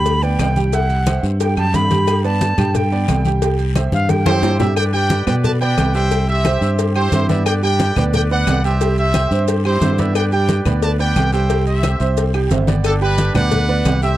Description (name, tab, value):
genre	latin, salsa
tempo	178 BPM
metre	4/4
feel	straight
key	unclear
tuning	A4 = 442 Hz
part	bright silver concert flute	melody	0.0-4.6 s	F5 to B5	-22 LUFS	right 1 dB	tape echo
part	bright upright piano	accompaniment	0.0-14.2 s	G3 to G5	-23 LUFS	right 6 dB	none
part	fingered electric bass	bass	0.0-14.2 s	G1 to B2	-17 LUFS	equal	none
part	congas	percussion	0.1-14.0 s	none	-22 LUFS	left 1 dB	none
part	cowbell and bongos	percussion	0.1-14.0 s	none	-25 LUFS	left 9 dB	none
part	guiro	percussion	0.1-14.2 s	none	-37 LUFS	left 17 dB	none
part	maracas	percussion	0.1-14.2 s	none	-36 LUFS	right 17 dB	none
part	claves	percussion	0.4-14.0 s	none	-32 LUFS	left 18 dB	none
part	timbales and agogo bells	percussion	0.4-14.0 s	none	-28 LUFS	right 6 dB	none
part	bright trumpet section	melody	4.3-14.2 s	D4 to A5	-21 LUFS	equal	none
room	little or no reverb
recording	dry, close 1970s-style studio recording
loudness	-14 LUFS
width	side -14 dB against mid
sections	0.0-4.8 A section; 4.8-14.2 B section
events	flute solo 0.0-4.8; drum fill 3.9-4.8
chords	0.0 G; 0.7 C; 2.1 G; 3.4 C; 7.5 G; 8.8 C; 12.8 G